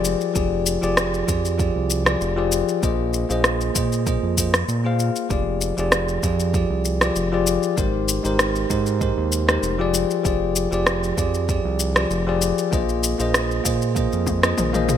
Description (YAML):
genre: sunset chillout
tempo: 97 BPM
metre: 4/4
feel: swing 53% on 16ths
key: F dorian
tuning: A4 = 440 Hz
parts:
  - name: bell-like tine electric piano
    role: accompaniment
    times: 0.0-15.0 s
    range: F3 to F5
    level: -22 LUFS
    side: moving between left 8 dB and right 7 dB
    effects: auto-pan, ping-pong delay
  - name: round analog bass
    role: bass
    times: 0.0-15.0 s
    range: F1 to Bb2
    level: -25 LUFS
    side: right 1 dB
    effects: none
  - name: deep house drum kit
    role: drums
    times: 0.0-15.0 s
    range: rim click, shaker, toms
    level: -23 LUFS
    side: left 1 dB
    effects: studio reverb
  - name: electronic kick drum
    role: drums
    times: 0.4-14.4 s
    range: none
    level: -25 LUFS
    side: right 1 dB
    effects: studio reverb
room: wet plate reverb, RT60 2.3 s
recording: bright 1980s-style digital production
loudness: -19 LUFS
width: side -9 dB against mid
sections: 0.0-15.0 A section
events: drum fill 14.3-15.0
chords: 0.0 Fm69; 2.8 Bb7sus4; 5.3 Fm69; 7.8 Abmaj9; 9.9 Fm69; 12.7 Bb7sus4